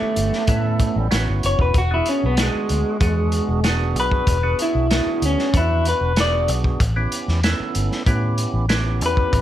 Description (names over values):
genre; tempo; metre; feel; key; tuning
straight-eighth soul blues; 95 BPM; 4/4; straight; A major; A4 = 441 Hz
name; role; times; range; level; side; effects
electric guitar through a small old amp; melody; 0.0-9.4 s; G#3 to D5; -21 LUFS; left 1 dB; plate reverb
percussive tonewheel organ; accompaniment; 0.0-9.4 s; B3 to B4; -26 LUFS; right 4 dB; slow rotary speaker, overdrive, plate reverb
vintage muted fingered electric bass; bass; 0.0-9.4 s; E1 to A2; -21 LUFS; equal; none
crunchy breakbeat drum kit; drums; 0.2-9.4 s; hi-hat, kick drum, snare drum; -23 LUFS; equal; none
room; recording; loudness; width
light reverb; none; -17 LUFS; side -12 dB against mid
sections
0.0-9.4 A section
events
clean electric guitar solo 0.0-9.4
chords
0.0 A9; 1.7 E9; 6.8 A9